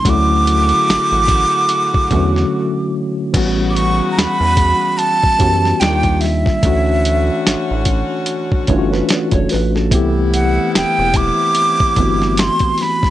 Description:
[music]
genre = R&B, neo-soul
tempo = 73 BPM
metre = 4/4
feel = swing 57% on 16ths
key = D major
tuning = A4 = 439 Hz
[part]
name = breathy jazz flute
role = melody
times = 0.0-13.1 s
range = E5 to D6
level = -16 LUFS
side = right 2 dB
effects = none
[part]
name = mellow tine electric piano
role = accompaniment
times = 0.0-13.1 s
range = D3 to G4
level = -19 LUFS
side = left 1 dB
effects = medium stereo tremolo
[part]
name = bright saxophone section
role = stabs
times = 0.1-12.8 s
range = C3 to G4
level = -25 LUFS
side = left 3 dB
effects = plate reverb
[part]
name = rubbery square bass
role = bass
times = 0.1-12.5 s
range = E1 to F#2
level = -18 LUFS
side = equal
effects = none
[part]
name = dusty soul sampler-style drum kit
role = drums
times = 0.1-13.1 s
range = crash cymbal, hi-hat, kick drum, snare drum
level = -18 LUFS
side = equal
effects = overdrive
[part]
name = nylon-string guitar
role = second line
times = 8.7-10.1 s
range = F#4 to D5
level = -25 LUFS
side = right 4 dB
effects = none
[sound]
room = light reverb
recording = nothing above 10.8 kHz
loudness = -13 LUFS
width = side -14 dB against mid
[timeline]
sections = 0.0-3.3 A section; 3.3-13.1 A section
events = break 2.5-3.3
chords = 0.1 Dmaj9; 3.3 A13; 5.8 Ebmaj7; 6.6 Dmaj7; 9.9 Am9

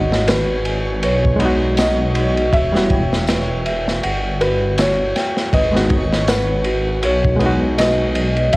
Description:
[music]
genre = trip hop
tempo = 80 BPM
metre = 4/4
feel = swing 57% on 16ths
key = G# minor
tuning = A4 = 443 Hz
[part]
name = felt-muted upright piano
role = melody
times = 0.0-8.6 s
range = B4 to E5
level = -21 LUFS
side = equal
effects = cassette tape, tape echo
[part]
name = reed electric piano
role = accompaniment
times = 0.0-8.5 s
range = G3 to F#4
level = -20 LUFS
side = equal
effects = harmonic tremolo
[part]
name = large celesta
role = arpeggios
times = 0.0-8.6 s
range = F#4 to G#5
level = -24 LUFS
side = right 1 dB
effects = tape echo
[part]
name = dark detuned saw bass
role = bass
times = 0.0-8.6 s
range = E1 to B1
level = -20 LUFS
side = equal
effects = transformer saturation
[part]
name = backwards swelling texture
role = texture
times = 0.0-8.6 s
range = C#5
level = -32 LUFS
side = equal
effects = built-in reverb
[part]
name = crunchy breakbeat drum kit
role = drums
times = 0.1-8.6 s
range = kick drum, ride cymbal, snare drum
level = -20 LUFS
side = equal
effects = cassette tape
[part]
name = tambourine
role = percussion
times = 0.3-8.0 s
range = none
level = -33 LUFS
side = left 4 dB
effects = none
[sound]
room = little or no reverb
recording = home recording on cassette, vinyl crackle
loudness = -15 LUFS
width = side -22 dB against mid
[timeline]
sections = 0.0-8.6 A section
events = none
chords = 0.0 G#m7; 2.5 Emadd9; 5.5 G#m7

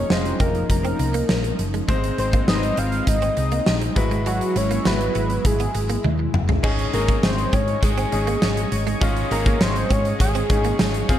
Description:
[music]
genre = 1980s-style pop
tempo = 101 BPM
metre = 4/4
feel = straight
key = Ab mixolydian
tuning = A4 = 440 Hz
[part]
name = fat analog lead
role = melody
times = 0.0-11.1 s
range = F#4 to F5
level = -26 LUFS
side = equal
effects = chorus, tape echo
[part]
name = clear baby grand piano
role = accompaniment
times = 0.0-11.2 s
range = Ab3 to Eb5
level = -29 LUFS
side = left 3 dB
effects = none
[part]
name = warm analog pad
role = sustained chords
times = 0.0-11.2 s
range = F3 to Db6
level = -29 LUFS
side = equal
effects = chorus
[part]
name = direct-recorded clean electric guitar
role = riff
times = 0.0-11.0 s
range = Ab3 to C4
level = -31 LUFS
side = right 8 dB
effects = ensemble chorus
[part]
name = hollow-body short-scale fingered electric bass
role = bass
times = 0.1-11.2 s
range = F1 to Ab2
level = -24 LUFS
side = equal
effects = none
[part]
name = big rock drum kit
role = drums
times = 0.1-11.2 s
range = crash cymbal, hi-hat, kick drum, snare drum, tambourine, toms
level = -22 LUFS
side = equal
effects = gated reverb
[part]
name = overdriven electric guitar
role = accompaniment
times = 6.6-11.2 s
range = F2 to Ab3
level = -33 LUFS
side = left 1 dB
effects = wide subtle chorus
[sound]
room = studio ambience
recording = none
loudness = -18 LUFS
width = side -11 dB against mid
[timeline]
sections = 0.0-6.6 A section; 6.6-11.2 B section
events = drum fill 6.0-6.6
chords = 0.0 Dbadd9/F; 1.9 Ab; 4.0 Eadd9/G#; 6.6 Absus4

